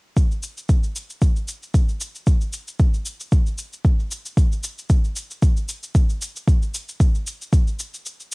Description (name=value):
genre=organic downtempo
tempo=114 BPM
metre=4/4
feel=swing 55% on 16ths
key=none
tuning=none
part: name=electronic kick drum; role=drums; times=0.2-7.6 s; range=none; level=-17 LUFS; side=equal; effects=none
part: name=shaker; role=drums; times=0.2-8.3 s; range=none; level=-32 LUFS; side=left 1 dB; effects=none
room=little or no reverb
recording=home recording on cassette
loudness=-19 LUFS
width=side -32 dB against mid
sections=0.2-8.3 A section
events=kick drops out 8.1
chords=none